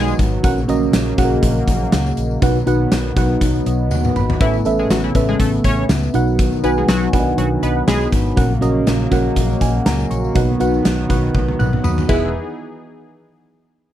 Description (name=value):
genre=1980s-style pop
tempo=121 BPM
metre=4/4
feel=swing 55% on 16ths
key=unclear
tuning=A4 = 437 Hz
part: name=mellow FM electric piano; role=accompaniment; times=0.0-12.4 s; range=E2 to F#6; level=-19 LUFS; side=right 1 dB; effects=chorus, phaser
part: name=warm analog pad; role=sustained chords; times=0.0-12.3 s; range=C#3 to G#4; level=-23 LUFS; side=left 1 dB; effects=chorus
part: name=funky polysynth comp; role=stabs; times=0.0-0.1, 4.4-8.1, 12.1-12.3 s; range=E3 to C#5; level=-22 LUFS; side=left 2 dB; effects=chorus
part: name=vintage muted fingered electric bass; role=bass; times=0.0-12.3 s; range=E1 to D#2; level=-21 LUFS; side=equal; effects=none
part: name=tambourine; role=percussion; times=0.1-12.3 s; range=none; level=-40 LUFS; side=left 18 dB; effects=none
part: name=gated 80s drum kit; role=drums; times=0.2-12.2 s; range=crash cymbal, hi-hat, kick drum, snare drum, tambourine, toms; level=-19 LUFS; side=equal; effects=none
room=little or no reverb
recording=none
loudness=-14 LUFS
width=side -12 dB against mid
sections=0.0-12.3 A section; 12.3-13.9 B section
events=FM electric piano fill 3.4-4.4, 7.4-8.4, 11.3-12.3; drum fill 3.9-4.4, 11.3-12.3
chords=0.4 F#/A#; 2.4 B; 4.4 Aadd9; 6.1 B; 8.4 F#/A#; 10.4 B; 12.1 Emaj7; 12.3 N.C.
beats=| 0.44 0.94 1.43 1.93 | 2.42 2.92 3.41 3.91 | 4.41 4.90 5.40 5.89 | 6.39 6.88 7.38 7.88 | 8.37 8.87 9.37 9.86 | 10.36 10.85 11.35 11.84 | 12.34